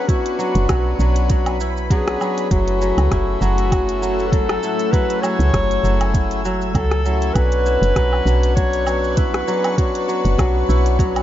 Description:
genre	organic downtempo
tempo	99 BPM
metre	4/4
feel	swing 55% on 16ths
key	unclear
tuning	A4 = 441 Hz
part	mellow clarinet	melody	0.0-11.0 s	F#4 to C#5	-23 LUFS	left 1 dB	ping-pong delay
part	pedal harmonium	accompaniment	0.0-11.2 s	F#3 to A4	-24 LUFS	left 5 dB	sidechain pumping, digital delay
part	granular cloud pad	sustained chords	0.0-11.2 s	A3 to E6	-29 LUFS	right 1 dB	built-in reverb, sidechain pumping
part	kora	arpeggios	0.0-11.2 s	F#3 to E4	-26 LUFS	right 2 dB	digital delay
part	electronic kick drum	drums	0.1-11.1 s	none	-19 LUFS	equal	none
part	organic electronic drum kit	drums	0.1-11.2 s	hi-hat, rim click, shaker, woodblock	-28 LUFS	right 1 dB	none
part	woody FM bass	bass	0.6-11.2 s	F#1 to C#2	-19 LUFS	equal	sidechain pumping
room	light reverb, studio reverb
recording	dark, warm production, nothing above 7.5 kHz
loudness	-16 LUFS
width	side -12 dB against mid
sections	0.0-11.2 A section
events	none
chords	0.0 Bmadd9; 2.5 F#m7; 7.4 Bmadd9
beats	| 0.09 0.69 1.30 1.90 | 2.51 3.12 3.72 4.33 | 4.93 5.54 6.15 6.75 | 7.36 7.96 8.57 9.18 | 9.78 10.39 10.99

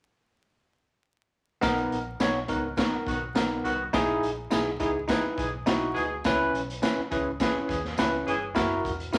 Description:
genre	uptempo 1960s-style soul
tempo	104 BPM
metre	4/4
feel	straight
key	B major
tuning	A4 = 440 Hz
part	bell-like tine electric piano	accompaniment	1.6-9.2 s	B3 to C#5	-30 LUFS	equal	none
part	vintage muted fingered electric bass	bass	1.6-9.2 s	E1 to D#2	-42 LUFS	equal	none
part	raw garage drum kit	drums	1.6-9.2 s	hi-hat, kick drum, snare drum	-32 LUFS	equal	none
part	tambourine	percussion	1.6-9.2 s	none	-47 LUFS	equal	none
part	warm horn section	second line	2.5-8.5 s	D#3 to G#4	-35 LUFS	equal	none
room	moderate large studio reverb, RT60 1.1 s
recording	vinyl crackle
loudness	-27 LUFS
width	mono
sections	1.6-9.2 A section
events	none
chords	1.6 Bmaj7; 3.9 Emaj7; 6.2 C#m7; 8.6 F#7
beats	| 1.63 2.21 2.78 3.36 | 3.94 4.52 5.09 5.67 | 6.25 6.83 7.41 7.98 | 8.56 9.14

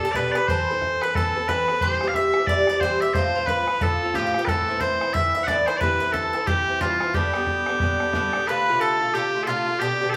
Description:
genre	celtic folk, Celtic hornpipe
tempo	180 BPM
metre	4/4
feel	swing 60% on 8ths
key	unclear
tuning	A4 = 440 Hz
part	loud bright bagpipes	melody	0.0-10.2 s	F4 to F#5	-25 LUFS	equal	none
part	mandolin	second line	0.0-10.2 s	F4 to E5	-30 LUFS	equal	none
part	Irish bouzouki	accompaniment	0.0-10.2 s	G2 to B4	-29 LUFS	equal	none
part	bodhran	percussion	0.1-8.4 s	none	-31 LUFS	equal	none
room	wet large studio reverb, RT60 0.9 s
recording	band playing live in one room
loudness	-22 LUFS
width	mono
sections	0.0-8.5 A section; 8.5-10.2 A section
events	none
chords	0.5 Amadd9; 1.8 C; 3.2 F; 4.5 Am; 5.8 C; 7.1 G; 8.5 F6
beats	0.16 | 0.49 0.82 1.16 1.49 | 1.82 2.15 2.49 2.82 | 3.15 3.49 3.82 4.15 | 4.49 4.82 5.15 5.48 | 5.82 6.15 6.48 6.82 | 7.15 7.48 7.82 8.15 | 8.48 8.81 9.14 9.48 | 9.81 10.14

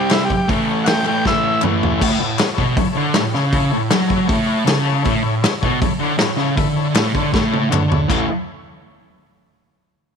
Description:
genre	garage rock duo or trio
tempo	158 BPM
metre	4/4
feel	straight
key	A mixolydian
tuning	A4 = 442 Hz
part	overdriven combo organ	melody	0.0-1.6 s	E4 to G5	-22 LUFS	equal	none
part	overdriven combo organ	sustained chords	0.0-8.3 s	G3 to A5	-26 LUFS	left 9 dB	none
part	thick fuzz guitar	riff	0.0-8.2 s	A2 to C4	-18 LUFS	right 1 dB	distortion
part	raw garage drum kit	drums	0.1-8.2 s	crash cymbal, hi-hat, kick drum, snare drum, toms	-19 LUFS	equal	none
part	group handclap	percussion	0.1-8.3 s	none	-28 LUFS	left 14 dB	none
room	light reverb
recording	1960s-style stereo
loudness	-15 LUFS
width	side -6 dB against mid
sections	0.0-2.0 A section; 2.0-8.1 B section; 8.1-9.6 C section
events	drum fill 1.2-2.0, 7.3-8.1; transistor combo organ fill 4.5-5.1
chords	0.5 A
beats	0.11 | 0.49 0.87 1.25 1.63 | 2.01 2.39 2.77 3.15 | 3.53 3.91 4.29 4.67 | 5.05 5.43 5.81 6.19 | 6.57 6.95 7.33 7.71 | 8.09

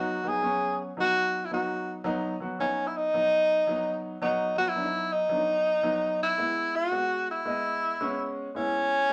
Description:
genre	soul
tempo	111 BPM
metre	4/4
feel	swing 65% on 8ths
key	E major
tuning	A4 = 440 Hz
part	breathy tenor saxophone	melody	0.0-9.1 s	C#4 to G#4	-28 LUFS	equal	none
part	warm grand piano	accompaniment	0.0-9.1 s	F#3 to D#5	-35 LUFS	equal	none
room	moderate studio reverb, RT60 0.6 s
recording	none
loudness	-28 LUFS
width	mono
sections	0.0-6.4 A section; 6.4-9.1 B section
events	none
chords	0.0 B; 6.4 E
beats	0.43 0.97 1.51 | 2.06 2.60 3.14 3.68 | 4.22 4.76 5.31 5.85 | 6.39 6.93 7.48 8.02 | 8.56 9.11

